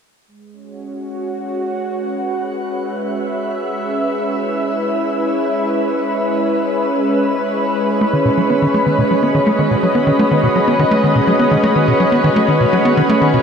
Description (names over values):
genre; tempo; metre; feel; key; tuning
ambient, sequencer-driven space music; 124 BPM; 4/4; straight; unclear; A4 = 440 Hz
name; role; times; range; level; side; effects
lush unison pad; sustained chords; 0.3-13.4 s; G#3 to E5; -15 LUFS; equal; chorus
bubbling stepped-filter texture; texture; 0.3-13.4 s; B4; -27 LUFS; right 1 dB; none
tight sequencer bass; riff; 8.0-13.4 s; B2 to B3; -16 LUFS; equal; tape echo
room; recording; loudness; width
wet shimmer reverb, RT60 8.0 s; cassette tape; -14 LUFS; side -6 dB against mid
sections
0.3-13.4 A section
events
filter sweep on analog synth pad 0.3-13.4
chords
0.3 C#m; 8.0 B